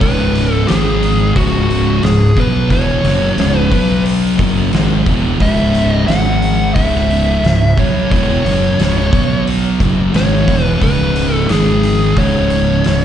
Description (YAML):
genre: stoner and doom metal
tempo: 89 BPM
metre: 4/4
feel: straight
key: C# minor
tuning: A4 = 440 Hz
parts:
  - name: fuzz lead guitar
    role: melody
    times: 0.0-13.0 s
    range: F#4 to F#5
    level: -18 LUFS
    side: left 1 dB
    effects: distortion, slapback echo, tape echo
  - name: thick fuzz guitar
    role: riff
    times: 0.0-13.0 s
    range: C#2 to B3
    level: -18 LUFS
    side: left 9 dB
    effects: distortion, slapback echo
  - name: thick fuzz guitar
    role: riff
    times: 0.0-13.0 s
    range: C#2 to B3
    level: -17 LUFS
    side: right 7 dB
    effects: distortion
  - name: fuzz fingered electric bass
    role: bass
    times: 0.0-13.0 s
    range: C#1 to B1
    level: -18 LUFS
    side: equal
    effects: overdrive
  - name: oversized low-tuned drum kit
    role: drums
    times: 0.0-13.0 s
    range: hi-hat, kick drum, snare drum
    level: -19 LUFS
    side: equal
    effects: none
room: little or no reverb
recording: live gig heard through the venue's PA, recital hall reverb, nothing above 10.3 kHz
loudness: -11 LUFS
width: side -10 dB against mid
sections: 0.0-13.0 A section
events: none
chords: 0.0 C#5; 0.7 G#5; 1.4 C#m; 3.7 B5; 4.4 C#m; 6.1 G#5; 6.8 C#m; 9.1 B5; 9.8 C#m; 11.5 G#5; 12.2 C#5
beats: | 0.01 0.69 1.36 2.04 | 2.71 3.39 4.06 4.74 | 5.41 6.09 6.76 7.44 | 8.11 8.79 9.46 10.14 | 10.82 11.49 12.17 12.85